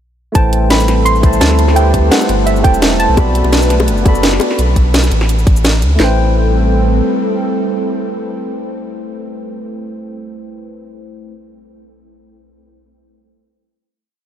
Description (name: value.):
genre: liquid drum and bass.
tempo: 170 BPM.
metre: 4/4.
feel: swing 54% on 16ths.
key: A dorian.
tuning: A4 = 440 Hz.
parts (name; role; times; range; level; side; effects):
soft round pluck; melody; 0.3-3.5 s; E5 to C6; -19 LUFS; right 2 dB; chorus, ping-pong delay.
bright tine electric piano; accompaniment; 0.3-11.3 s; A3 to B5; -19 LUFS; left 1 dB; wide subtle chorus, ping-pong delay.
airy breathy pad; sustained chords; 0.3-9.5 s; G3 to B4; -20 LUFS; right 1 dB; chorus, sidechain pumping.
warm sub bass; bass; 0.3-7.0 s; E1 to D2; -13 LUFS; equal; tube saturation.
garage drum kit; drums; 0.3-6.1 s; kick drum, snare drum; -11 LUFS; equal; overdrive.
drum and bass drum kit; drums; 0.4-5.9 s; hi-hat, shaker, snare drum; -18 LUFS; right 1 dB; overdrive.
bongos; percussion; 3.2-4.5 s; none; -23 LUFS; left 4 dB; none.
room: moderate huge ambient reverb, RT60 6.6 s.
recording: dreamy mix soaked in reverb, faint mains hum.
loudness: -10 LUFS.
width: side -10 dB against mid.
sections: 0.3-6.0 drop; 6.0-8.8 final chord.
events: drop 0.3-6.0.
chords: 0.3 Am7; 3.2 Bm7; 6.0 Am7.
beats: | 0.35 0.70 1.06 1.41 | 1.76 2.12 2.47 2.82 | 3.17 3.53 3.88 4.23 | 4.58 4.94 5.29 5.64 | 6.00 6.35 6.70 7.06 | 7.41 7.76 8.12 8.47.